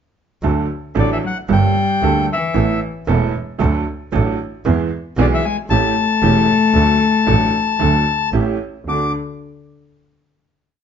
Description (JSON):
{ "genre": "tango", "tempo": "114 BPM", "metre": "4/4", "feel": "rubato", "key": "D major", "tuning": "A4 = 440 Hz", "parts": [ { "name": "bright upright piano", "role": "accompaniment", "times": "0.4-9.1 s", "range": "E1 to A4", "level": "-20 LUFS", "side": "right 5 dB", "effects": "none" }, { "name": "clear double bass", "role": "bass", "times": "0.4-9.1 s", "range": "E1 to E2", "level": "-19 LUFS", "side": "right 2 dB", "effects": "none" }, { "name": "bandoneon", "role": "melody", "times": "1.0-9.1 s", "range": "D5 to D6", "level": "-18 LUFS", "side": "left 5 dB", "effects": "none" }, { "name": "rich cello", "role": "second line", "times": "1.0-9.1 s", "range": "D3 to A3", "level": "-20 LUFS", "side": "left 5 dB", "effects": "none" } ], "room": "light reverb", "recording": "nothing above 7.5 kHz", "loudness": "-15 LUFS", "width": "side -8 dB against mid", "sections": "0.4-8.9 A section; 8.9-10.8 final chord", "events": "none", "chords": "0.4 D; 1.5 Gmadd9; 2.6 Asus2; 3.6 D; 4.7 E; 5.7 A7; 6.8 D; 8.3 A7; 8.9 D" }